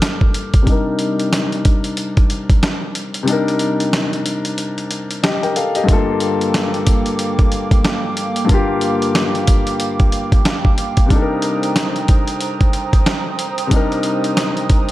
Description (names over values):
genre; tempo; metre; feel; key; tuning
hip hop, boom-bap hip-hop; 92 BPM; 4/4; swing 61% on 16ths; G minor; A4 = 441 Hz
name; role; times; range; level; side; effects
warm concert grand piano; accompaniment; 0.0-14.9 s; G2 to G5; -19 LUFS; left 3 dB; cassette tape, high-pass filter, low-pass filter
dusty soul sampler-style drum kit; drums; 0.0-14.9 s; hi-hat, kick drum, snare drum; -16 LUFS; equal; none
hollow soft pad; sustained chords; 5.9-14.9 s; Bb3 to Eb6; -23 LUFS; right 5 dB; chorus, high-pass filter, low-pass filter
room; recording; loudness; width
light reverb; none; -14 LUFS; side -16 dB against mid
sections
0.0-5.9 A section; 5.9-14.9 B section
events
filter sweep on grand piano 0.0-5.9; kick muted 3.3-5.9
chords
0.0 Gm7; 0.7 Cm7; 5.9 Gm7; 11.1 Cm7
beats
0.02 | 0.67 1.32 1.97 2.63 | 3.28 3.93 4.58 5.24 | 5.89 6.54 7.19 7.84 | 8.50 9.15 9.80 10.45 | 11.10 11.76 12.41 13.06 | 13.71 14.37